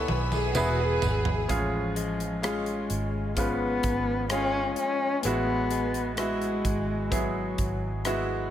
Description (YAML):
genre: pop ballad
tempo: 64 BPM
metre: 4/4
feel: straight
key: unclear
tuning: A4 = 440 Hz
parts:
  - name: warm symphonic violin section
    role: second line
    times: 0.0-1.5 s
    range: F#4 to G#4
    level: -32 LUFS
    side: equal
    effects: ping-pong delay
  - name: bright grand piano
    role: accompaniment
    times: 0.0-8.5 s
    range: A2 to D5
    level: -30 LUFS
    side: right 1 dB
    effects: none
  - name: bright studio string section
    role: sustained chords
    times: 0.0-1.5 s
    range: B4 to E6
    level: -39 LUFS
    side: left 1 dB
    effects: none
  - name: direct-recorded clean electric guitar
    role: arpeggios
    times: 0.0-8.5 s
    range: B2 to E#4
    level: -38 LUFS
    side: left 7 dB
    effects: none
  - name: vintage muted fingered electric bass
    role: bass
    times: 0.0-8.5 s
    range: E1 to B1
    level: -32 LUFS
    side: right 1 dB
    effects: none
  - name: modern studio drum kit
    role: drums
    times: 0.1-8.3 s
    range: hi-hat, kick drum, rim click, toms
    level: -32 LUFS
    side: right 1 dB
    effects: none
  - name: tambourine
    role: percussion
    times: 0.3-1.2 s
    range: none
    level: -41 LUFS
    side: right 7 dB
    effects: none
  - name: dark cello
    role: melody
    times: 1.5-8.1 s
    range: E#3 to C#4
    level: -30 LUFS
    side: left 2 dB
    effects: none
room: light reverb, small room ambience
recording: none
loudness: -25 LUFS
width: side -11 dB against mid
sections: 0.0-1.5 A section; 1.5-8.5 B section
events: drum fill 0.0-1.5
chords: 0.0 E/B; 1.5 C#; 5.2 Eadd9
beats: 0.55 | 1.49 2.43 3.37 4.30 | 5.24 6.18 7.12 8.05